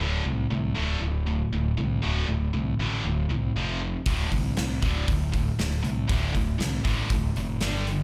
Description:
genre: hard rock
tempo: 118 BPM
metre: 4/4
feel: straight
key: D minor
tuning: A4 = 440 Hz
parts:
  - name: tight distorted guitar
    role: riff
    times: 0.0-8.0 s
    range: D2 to G3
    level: -31 LUFS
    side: equal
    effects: distortion
  - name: fuzz fingered electric bass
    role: bass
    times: 0.0-8.0 s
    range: D1 to C2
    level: -30 LUFS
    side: equal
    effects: overdrive
  - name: gated 80s drum kit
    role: drums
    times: 4.1-8.0 s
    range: hi-hat, kick drum, snare drum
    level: -31 LUFS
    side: equal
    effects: none
room: studio reverb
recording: live gig heard through the venue's PA, club reverb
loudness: -27 LUFS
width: mono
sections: 0.0-8.0 A section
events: none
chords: 0.0 D5; 3.6 F5; 4.1 D5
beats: | 0.00 0.51 1.02 1.52 | 2.03 2.54 3.05 3.56 | 4.07 4.57 5.08 5.59 | 6.09 6.60 7.11 7.62

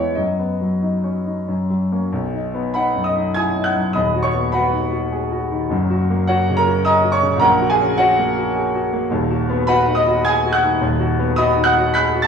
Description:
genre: classical, romantic character piece for solo piano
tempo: 90-108 BPM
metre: 3/4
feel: rubato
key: B major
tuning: A4 = 442 Hz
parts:
  - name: clear concert grand piano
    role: solo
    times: 0.0-12.3 s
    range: D#1 to B6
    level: -16 LUFS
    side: equal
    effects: none
room: wet recital hall reverb, RT60 1.5 s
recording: worn, warbling old tape, cassette tape, warbly pitch drift, studio reverb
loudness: -16 LUFS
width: side -6 dB against mid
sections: 0.0-2.1 A section; 2.1-12.3 B section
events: none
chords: 0.2 B/F#; 1.5 F#; 2.1 B; 3.9 B/D#; 5.7 F#; 7.4 F#/A#; 9.1 B/D#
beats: | 0.17 0.82 1.48 | 2.13 2.75 3.36 | 3.95 4.54 5.13 | 5.71 6.30 6.87 | 7.44 8.01 8.57 | 9.12 9.68 10.25 | 10.81 11.39 11.96

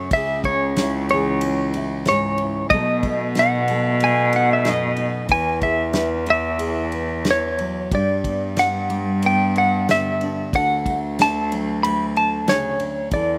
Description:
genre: acoustic folk-pop ballad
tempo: 92 BPM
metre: 4/4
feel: straight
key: unclear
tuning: A4 = 437 Hz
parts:
  - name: semi-hollow electric guitar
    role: melody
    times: 0.0-13.4 s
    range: C#5 to B5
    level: -23 LUFS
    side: equal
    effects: tremolo, slapback echo
  - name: nylon-string guitar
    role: accompaniment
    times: 0.0-13.4 s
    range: F#2 to B4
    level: -29 LUFS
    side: equal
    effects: none
  - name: rich cello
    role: bass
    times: 0.0-13.4 s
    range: C#2 to B2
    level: -26 LUFS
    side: equal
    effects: none
  - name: unplugged drum kit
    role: drums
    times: 0.1-13.3 s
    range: kick drum, ride cymbal, snare drum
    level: -30 LUFS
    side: equal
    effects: none
room: little or no reverb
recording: recorded outdoors, with no room sound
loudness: -20 LUFS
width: mono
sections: 0.0-13.4 A section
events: none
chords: 0.1 C#m; 2.7 B7; 5.3 Eadd9; 7.9 G; 10.5 D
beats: | 0.12 0.77 1.42 2.07 | 2.71 3.36 4.01 4.65 | 5.30 5.95 6.61 7.27 | 7.93 8.58 9.24 9.89 | 10.55 11.20 11.84 12.48 | 13.12

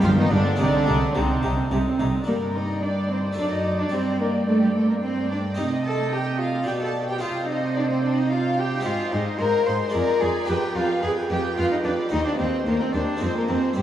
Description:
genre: classical, baroque-style concerto movement with solo episodes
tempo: 109 BPM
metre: 3/4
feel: straight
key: C minor from 8.9 s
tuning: A4 = 439 Hz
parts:
  - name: rich cello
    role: melody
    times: 0.0-13.8 s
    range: C3 to C5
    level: -24 LUFS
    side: equal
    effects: none
  - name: warm chamber violin section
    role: melody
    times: 0.0-13.8 s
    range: C5 to A5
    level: -36 LUFS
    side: equal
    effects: none
  - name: warm chamber violin section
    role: second line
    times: 0.0-13.8 s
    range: C4 to C6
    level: -30 LUFS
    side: left 1 dB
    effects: none
  - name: dark chamber viola section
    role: accompaniment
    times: 0.0-13.8 s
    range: B3 to Eb5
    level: -30 LUFS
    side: equal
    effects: none
  - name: harpsichord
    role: accompaniment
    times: 0.0-13.8 s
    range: Eb2 to F4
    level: -32 LUFS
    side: equal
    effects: none
  - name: rich chamber cello section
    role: bass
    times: 0.0-13.8 s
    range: Eb2 to C3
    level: -27 LUFS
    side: right 2 dB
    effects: none
  - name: rich chamber double bass section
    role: bass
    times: 0.0-2.1 s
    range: G1 to C2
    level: -26 LUFS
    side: right 1 dB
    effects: none
room: wet cathedral reverb, RT60 5.2 s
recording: in a vast, echoing space, small room ambience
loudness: -20 LUFS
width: side -11 dB against mid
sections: 0.0-2.3 A section; 2.3-13.8 B section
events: none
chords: 0.0 G7; 0.6 Cm; 2.3 G5; 3.4 D/F#; 3.9 G5; 5.6 Cm; 6.7 G/B; 7.2 Cm; 8.9 Ab; 9.9 Ddim/F; 10.5 G7/F; 12.1 Cm/Eb; 13.2 Fm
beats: 0.04 | 0.59 1.15 1.71 | 2.27 2.82 3.37 | 3.92 4.47 5.02 | 5.57 6.12 6.67 | 7.21 7.76 8.31 | 8.85 9.39 9.94 | 10.49 11.03 11.58 | 12.12 12.67 13.22 | 13.77

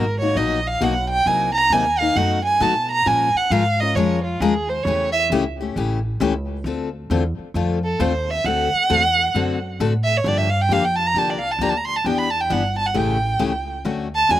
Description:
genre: acoustic string swing (jazz manouche)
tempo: 134 BPM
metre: 4/4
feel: swing 65% on 8ths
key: unclear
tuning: A4 = 440 Hz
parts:
  - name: rich violin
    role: melody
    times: 0.0-14.4 s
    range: F4 to C6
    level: -19 LUFS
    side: right 2 dB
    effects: slapback echo
  - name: picked steel-string acoustic guitar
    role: accompaniment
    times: 0.0-14.4 s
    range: B2 to Bb4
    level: -23 LUFS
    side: left 6 dB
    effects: slapback echo
  - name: upright bass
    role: bass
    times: 0.0-14.4 s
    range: G1 to B2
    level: -24 LUFS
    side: right 1 dB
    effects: none
room: little or no reverb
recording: recorded outdoors, with no room sound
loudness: -18 LUFS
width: side -13 dB against mid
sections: 0.0-6.7 A section; 6.7-14.4 A section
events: violin solo 0.0-14.4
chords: 0.0 Bmaj7; 1.3 Cm7b5; 2.2 B7; 3.1 Bbm7; 4.9 A7; 6.7 Dm7; 8.5 D7; 10.3 Gm7; 12.1 Em7; 13.0 A7; 13.8 Dmaj7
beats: 0.36 0.81 | 1.26 1.71 2.16 2.61 | 3.06 3.51 3.96 4.41 | 4.86 5.31 5.76 6.21 | 6.66 7.11 7.55 8.01 | 8.46 8.90 9.35 9.80 | 10.25 10.70 11.15 11.60 | 12.05 12.50 12.95 13.40 | 13.85 14.30

